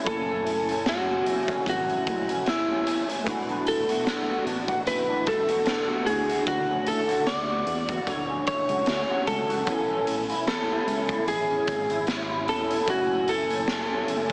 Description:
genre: indie pop, bedroom pop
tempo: 75 BPM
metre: 4/4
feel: swing 55% on 16ths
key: A major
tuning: A4 = 442 Hz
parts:
  - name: electric guitar through a small old amp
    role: accompaniment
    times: 0.0-14.3 s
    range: F#2 to F#4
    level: -31 LUFS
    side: equal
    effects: ensemble chorus, warbly pitch drift
  - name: warm analog keys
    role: accompaniment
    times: 0.0-14.3 s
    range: C#3 to G#5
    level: -34 LUFS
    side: equal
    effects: chorus, cassette tape
  - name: electric slide guitar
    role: melody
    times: 0.1-14.3 s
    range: E4 to D5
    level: -26 LUFS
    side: equal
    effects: lush chorus, slapback echo
  - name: chorused synth bass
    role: bass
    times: 0.1-14.3 s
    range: E1 to E2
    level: -36 LUFS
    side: equal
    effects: none
  - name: raw garage drum kit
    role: drums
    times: 0.1-14.3 s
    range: hi-hat, kick drum, snare drum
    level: -30 LUFS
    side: equal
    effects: none
room: moderate spring reverb, RT60 2.6 s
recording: heavily compressed radio sound, small speaker sound, faint mains hum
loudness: -23 LUFS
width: side -36 dB against mid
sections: 0.0-14.3 A section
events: none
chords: 0.1 F#m7; 3.3 E9sus4; 6.1 Dmaj7; 9.7 Amaj7; 12.9 F#m7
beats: | 0.06 0.86 1.67 2.47 | 3.27 4.07 4.87 5.67 | 6.47 7.27 8.07 8.88 | 9.68 10.48 11.28 12.08 | 12.88 13.68

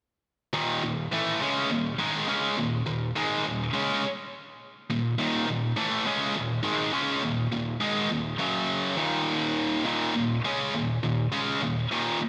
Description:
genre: rock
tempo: 103 BPM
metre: 4/4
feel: straight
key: Eb minor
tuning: A4 = 441 Hz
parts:
  - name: high-gain distorted guitar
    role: solo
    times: 0.5-12.2 s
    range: Eb2 to Db4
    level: -27 LUFS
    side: equal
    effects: distortion, slapback echo
room: moderate lush hall reverb, RT60 2.9 s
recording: big arena sound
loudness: -27 LUFS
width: mono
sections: 0.5-9.9 A section; 9.9-12.3 B section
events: none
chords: 0.5 Eb5; 8.4 Gb5; 9.0 Eb5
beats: | 0.53 1.11 1.69 2.27 | 2.86 3.44 4.03 4.61 | 5.19 5.77 6.36 6.94 | 7.52 8.11 8.69 9.27 | 9.85 10.44 11.02 11.60 | 12.18

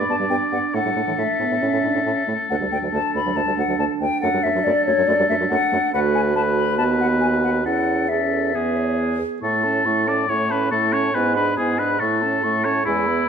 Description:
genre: quick classical-period movement for wind quintet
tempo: 140 BPM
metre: 4/4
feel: straight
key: D major, A major from 5.9 s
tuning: A4 = 440 Hz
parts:
  - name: warm oboe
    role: second line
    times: 0.0-13.3 s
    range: E4 to D5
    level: -23 LUFS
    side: left 2 dB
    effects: none
  - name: warm French horn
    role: accompaniment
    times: 0.0-13.3 s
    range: E3 to D4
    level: -26 LUFS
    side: right 2 dB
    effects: none
  - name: warm clarinet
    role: accompaniment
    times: 0.0-13.3 s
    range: C#4 to C#5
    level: -27 LUFS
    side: right 9 dB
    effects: none
  - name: clear bassoon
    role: bass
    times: 0.0-13.2 s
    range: D2 to A2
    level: -26 LUFS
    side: right 3 dB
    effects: none
  - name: hollow concert flute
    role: melody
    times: 0.1-13.3 s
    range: C#5 to C#6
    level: -24 LUFS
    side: left 6 dB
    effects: none
room: moderate recital hall reverb, RT60 1.5 s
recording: none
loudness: -18 LUFS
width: side -7 dB against mid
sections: 0.0-9.4 A section; 9.4-13.3 B section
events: none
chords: 0.0 G; 0.7 A; 2.5 D5; 4.2 D/F#; 5.9 Bm7/D; 6.8 B/D#; 7.7 A/E; 8.5 E; 9.4 A; 11.1 E7/G#; 12.0 A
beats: 0.30 | 0.74 1.18 1.62 2.06 | 2.50 2.93 3.37 3.79 | 4.23 4.66 5.08 5.51 | 5.94 6.36 6.78 7.21 | 7.65 8.10 8.54 8.98 | 9.43 9.86 10.29 10.72 | 11.15 11.58 12.01 12.43 | 12.86 13.29

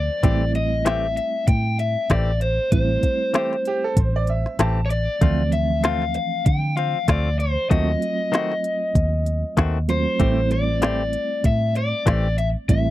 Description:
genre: straight-eighth soul blues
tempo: 96 BPM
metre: 4/4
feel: swing 55% on 16ths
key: A minor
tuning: A4 = 442 Hz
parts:
  - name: raw garage guitar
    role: melody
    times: 0.0-12.9 s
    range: C5 to G5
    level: -24 LUFS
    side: left 2 dB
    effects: overdrive
  - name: reed electric piano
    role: accompaniment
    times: 0.0-12.9 s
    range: E3 to F4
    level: -28 LUFS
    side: right 5 dB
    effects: tremolo
  - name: vintage muted fingered electric bass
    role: bass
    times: 0.0-12.9 s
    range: A1 to D3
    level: -22 LUFS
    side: equal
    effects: none
  - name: direct-recorded clean electric guitar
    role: stabs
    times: 0.2-12.3 s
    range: D#3 to G4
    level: -26 LUFS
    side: left 6 dB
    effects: none
  - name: organic electronic drum kit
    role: drums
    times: 0.2-12.9 s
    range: hi-hat, kick drum, snare drum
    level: -20 LUFS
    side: equal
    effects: none
  - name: bright upright piano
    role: second line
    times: 3.7-4.9 s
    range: G4 to A5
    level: -27 LUFS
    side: right 5 dB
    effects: none
room: little or no reverb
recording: dry, close 1970s-style studio recording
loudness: -19 LUFS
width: side -15 dB against mid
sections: 0.0-12.9 A section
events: none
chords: 0.2 Am7; 5.2 Dm7; 7.7 D#dim7; 10.2 Am7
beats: | 0.24 0.86 1.48 2.11 | 2.73 3.35 3.98 4.60 | 5.22 5.84 6.46 7.09 | 7.71 8.33 8.96 9.58 | 10.20 10.82 11.45 12.07 | 12.69

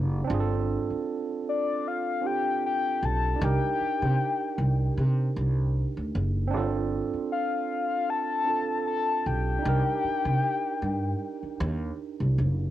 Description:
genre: R&B, neo-soul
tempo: 77 BPM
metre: 4/4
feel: swing 55% on 16ths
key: C dorian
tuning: A4 = 441 Hz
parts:
  - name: barky tine electric piano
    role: accompaniment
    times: 0.0-12.7 s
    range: C4 to Bb4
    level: -32 LUFS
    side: right 7 dB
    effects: medium stereo tremolo, cassette tape
  - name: upright bass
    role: bass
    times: 0.0-12.7 s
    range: F#1 to C3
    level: -26 LUFS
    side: equal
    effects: none
  - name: soft octave-layered synth lead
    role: melody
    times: 1.5-11.6 s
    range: D5 to A5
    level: -28 LUFS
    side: left 5 dB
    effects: chorus, cassette tape
room: light reverb, small room ambience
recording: home recording on cassette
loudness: -25 LUFS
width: side -13 dB against mid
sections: 0.0-12.7 A section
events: none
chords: 0.3 G9sus4; 3.4 Cm9; 6.5 G9sus4; 9.6 Cm9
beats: | 0.28 1.06 1.84 2.62 | 3.40 4.18 4.96 5.74 | 6.52 7.29 8.07 8.85 | 9.63 10.41 11.19 11.97

